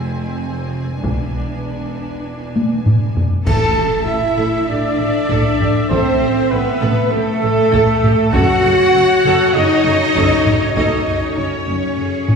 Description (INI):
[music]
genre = cinematic, epic orchestral film score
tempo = 99 BPM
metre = 4/4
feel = straight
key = unclear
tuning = A4 = 443 Hz
[part]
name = rich symphonic violin section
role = melody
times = 0.0-12.4 s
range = A4 to A5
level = -29 LUFS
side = left 2 dB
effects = none
[part]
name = rich symphonic violin section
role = second line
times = 0.0-12.4 s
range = Ab4 to A5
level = -30 LUFS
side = equal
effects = none
[part]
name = rich symphonic viola section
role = accompaniment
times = 0.0-12.4 s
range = C4 to E5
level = -25 LUFS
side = right 3 dB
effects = none
[part]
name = mellow French horn section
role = sustained chords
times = 0.0-12.4 s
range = Ab3 to A4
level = -20 LUFS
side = left 3 dB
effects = none
[part]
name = clear symphonic cello section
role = bass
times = 0.0-12.4 s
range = E2 to A4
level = -23 LUFS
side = right 1 dB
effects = none
[part]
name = rich studio double bass section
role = bass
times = 0.0-12.4 s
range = E1 to A1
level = -22 LUFS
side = right 1 dB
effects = none
[part]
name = taiko ensemble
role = drums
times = 1.0-12.4 s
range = none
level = -19 LUFS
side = equal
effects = none
[part]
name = hollow concert flute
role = second line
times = 3.5-12.4 s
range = A4 to A5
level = -24 LUFS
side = equal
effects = none
[part]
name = clear woodwind section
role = sustained chords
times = 3.5-12.4 s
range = A3 to E5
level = -26 LUFS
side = right 2 dB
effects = none
[part]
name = dark trumpet section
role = stabs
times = 3.5-12.4 s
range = A4 to A5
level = -22 LUFS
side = right 3 dB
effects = none
[part]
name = clash cymbals and concert bass drum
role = percussion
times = 3.5-4.6 s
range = none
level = -30 LUFS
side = equal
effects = none
[part]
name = timpani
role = percussion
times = 3.5-4.3 s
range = A2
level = -26 LUFS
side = left 1 dB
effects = none
[sound]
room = wet scoring stage reverb, RT60 1.9 s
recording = heard from further back in the room, studio reverb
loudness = -13 LUFS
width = side -5 dB against mid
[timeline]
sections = 0.0-3.5 A section; 3.5-12.4 B section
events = drum fill 2.6-3.5; band accent 3.5-4.1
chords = 0.0 Fm; 1.0 E7; 3.5 Am; 8.3 F#m